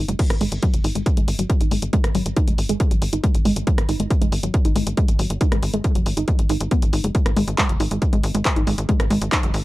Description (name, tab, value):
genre	driving peak-time techno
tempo	138 BPM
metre	4/4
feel	straight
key	unclear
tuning	A4 = 441 Hz
part	warbly dusty pluck	riff	0.0-9.5 s	F#3 to D#4	-25 LUFS	equal	chorus, sidechain pumping, tape echo
part	tight sequencer bass	bass	0.0-9.6 s	F#1 to G#1	-25 LUFS	equal	sidechain pumping
part	punchy analog drum machine	drums	0.1-9.6 s	crash cymbal, handclaps, hi-hat, rim click	-27 LUFS	equal	none
part	electronic kick drum	drums	0.2-9.4 s	none	-19 LUFS	equal	overdrive
room	little or no reverb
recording	dry, gritty hardware recording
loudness	-18 LUFS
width	side -18 dB against mid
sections	0.0-9.6 A section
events	filter sweep on synth arpeggio sound 0.0-9.6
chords	none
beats	| 0.19 0.63 1.06 1.50 | 1.93 2.37 2.80 3.23 | 3.67 4.11 4.54 4.97 | 5.41 5.84 6.28 6.71 | 7.15 7.58 8.02 8.45 | 8.89 9.32